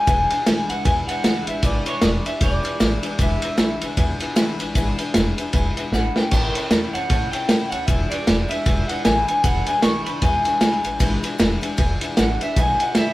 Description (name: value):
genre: rockabilly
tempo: 154 BPM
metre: 4/4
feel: swing 60% on 8ths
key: E mixolydian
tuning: A4 = 439 Hz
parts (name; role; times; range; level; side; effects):
- electric guitar through a small old amp; melody; 0.0-13.1 s; C#5 to C#6; -23 LUFS; equal; spring reverb
- picked steel-string acoustic guitar; accompaniment; 0.0-13.1 s; E2 to F#4; -29 LUFS; left 3 dB; none
- warm upright piano; accompaniment; 0.0-13.1 s; B4 to B5; -33 LUFS; left 1 dB; none
- upright bass; bass; 0.1-13.1 s; E1 to A2; -26 LUFS; equal; none
- vintage drum kit; drums; 0.1-13.1 s; crash cymbal, kick drum, ride cymbal, snare drum; -20 LUFS; equal; none
room: moderate studio ambience, RT60 0.5 s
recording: band playing live in one room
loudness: -18 LUFS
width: side -17 dB against mid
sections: 0.1-13.1 A section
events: drum fill 5.9-6.3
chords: 0.1 E7; 6.3 A7; 7.9 E7; 12.6 B7